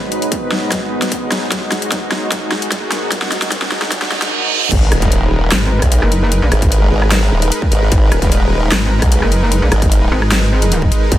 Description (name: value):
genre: heavy wobble dubstep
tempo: 150 BPM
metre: 4/4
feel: half-time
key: G# minor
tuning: A4 = 441 Hz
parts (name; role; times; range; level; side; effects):
- supersaw pad; sustained chords; 0.0-11.2 s; G#2 to C#5; -21 LUFS; equal; sidechain pumping
- riser, reverse cymbal and impact; sound effects; 2.5-6.3 s; none; -23 LUFS; right 3 dB; none
- deep dark ambient pad; texture; 0.0-11.2 s; G#2 to F#5; -26 LUFS; right 1 dB; chorus, built-in reverb, sidechain pumping
- dubstep drum kit; drums; 0.1-11.2 s; crash cymbal, handclaps, hi-hat, rim click, snare drum; -19 LUFS; left 1 dB; studio reverb
- electronic kick drum; drums; 0.3-11.2 s; none; -16 LUFS; equal; distortion, studio reverb
- formant-sweep wobble bass; bass; 4.7-11.2 s; D#1 to B1; -14 LUFS; equal; chorus, overdrive
- metallic wobble bass; bass; 5.5-10.9 s; F#1 to A#1; -14 LUFS; equal; chorus, overdrive
room: digital ambience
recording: dense, heavily limited modern master, high-pass filter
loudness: -12 LUFS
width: side -13 dB against mid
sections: 0.0-4.7 A section; 4.7-11.2 B section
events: build-up 0.0-4.7; drum fill 0.0-4.3; filter sweep on supersaw synth 0.0-4.7; filter sweep 0.0-4.7; reverse cymbal 3.9-4.7; drop 4.7-11.2; impact 4.7-6.3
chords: 0.0 B/G#; 1.5 D#m/G#; 4.7 G#madd9